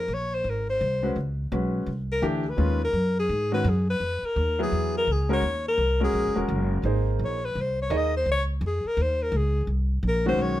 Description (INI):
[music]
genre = jazz, small-group swing and bop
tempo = 169 BPM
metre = 4/4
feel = swing 64% on 8ths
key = unclear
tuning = A4 = 440 Hz
[part]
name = breathy alto saxophone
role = melody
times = 0.0-10.6 s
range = G4 to Eb5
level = -26 LUFS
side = left 2 dB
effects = none
[part]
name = upright bass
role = bass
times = 0.0-10.6 s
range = Eb1 to Ab2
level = -26 LUFS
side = equal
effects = none
[part]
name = warm baby grand piano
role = accompaniment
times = 1.0-8.1, 10.3-10.6 s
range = Eb3 to Eb5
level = -28 LUFS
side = equal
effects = none
[sound]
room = light reverb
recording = none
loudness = -23 LUFS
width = side -14 dB against mid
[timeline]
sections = 0.0-10.6 A section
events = alto saxophone solo 0.0-10.6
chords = 0.0 Bb7(no3); 1.2 Db5; 1.9 Cadd9; 2.6 Ebm11; 4.0 Fm7b5; 4.7 E; 5.4 Ebm7; 6.8 Ab; 8.3 Db; 9.7 Cm7b5